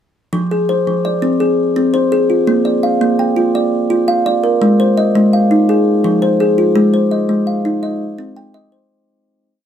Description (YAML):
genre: southern african traditional, mbira-style interlocking cycle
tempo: 112 BPM (dotted quarters)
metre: 12/8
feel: straight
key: F dorian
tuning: A4 = 442 Hz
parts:
  - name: kalimba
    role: solo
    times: 0.3-9.1 s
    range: F3 to G5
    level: -12 LUFS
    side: equal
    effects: none
room: little or no reverb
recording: close, detailed microphones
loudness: -12 LUFS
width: side -9 dB against mid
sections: 0.3-8.9 A section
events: fade-out 6.8-8.9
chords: 0.3 Fm; 2.5 Bb; 4.6 Ab; 5.7 Fm; 6.8 Ab; 7.8 Cm